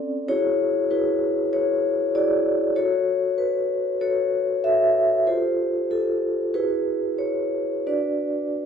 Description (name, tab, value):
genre	classical, contemporary piece for solo vibraphone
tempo	95 BPM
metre	4/4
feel	rubato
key	unclear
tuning	A4 = 440 Hz
part	vibraphone with soft mallets	solo	0.0-8.7 s	C4 to E5	-20 LUFS	left 1 dB	none
room	light reverb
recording	none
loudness	-20 LUFS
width	side -7 dB against mid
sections	0.0-8.7 A section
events	none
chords	0.3 E9; 2.8 F#m7; 5.3 Fadd9; 6.5 Eadd9; 7.9 D6